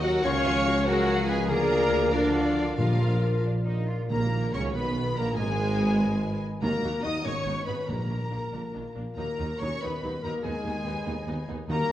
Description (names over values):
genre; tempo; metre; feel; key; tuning
classical; 95 BPM (dotted quarters); 6/8; rubato; Eb minor; A4 = 440 Hz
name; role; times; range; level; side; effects
warm symphonic violin section; melody; 0.0-11.9 s; D5 to Eb6; -36 LUFS; left 1 dB; none
bright concert flute; second line; 0.0-11.9 s; F4 to Eb6; -36 LUFS; left 1 dB; none
dark clarinet; second line; 0.0-11.9 s; D4 to Eb5; -33 LUFS; left 1 dB; none
rich symphonic violin section; second line; 0.0-11.9 s; D4 to Eb5; -36 LUFS; left 1 dB; none
rich symphonic viola section; accompaniment; 0.0-11.9 s; Gb3 to Db5; -35 LUFS; right 1 dB; none
warm French horn section; sustained chords; 0.0-11.9 s; D3 to Eb4; -34 LUFS; left 2 dB; none
concert harp; arpeggios; 0.0-11.9 s; Ab2 to Bb5; -34 LUFS; left 4 dB; none
mellow tuba; bass; 0.0-11.8 s; Ab1 to Eb2; -35 LUFS; right 2 dB; none
warm chamber double bass section; bass; 0.0-11.9 s; Ab1 to Eb2; -33 LUFS; right 2 dB; none
warm symphonic cello section; bass; 0.0-11.9 s; Eb2 to Bb4; -35 LUFS; right 2 dB; none
timpani; percussion; 2.8-8.5, 11.7-11.9 s; Bb2 to Eb3; -33 LUFS; equal; none
room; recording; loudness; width
wet recital hall reverb, RT60 1.4 s; worn, warbling old tape, cassette tape, warbly pitch drift; -24 LUFS; side -12 dB against mid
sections
0.0-4.1 A section; 4.1-11.9 B section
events
none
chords
0.3 Db; 1.5 Bb/D; 2.8 Bb; 4.1 Ebm/Bb; 5.4 Abm; 6.6 Ebm; 7.2 Abm; 7.9 Bb; 9.2 Ebm; 10.4 Abm/Eb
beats
| 0.25 0.88 | 1.50 2.13 | 2.78 3.44 | 4.11 4.75 | 5.38 6.00 | 6.62 7.24 | 7.88 8.52 | 9.17 9.81 | 10.44 11.06 | 11.69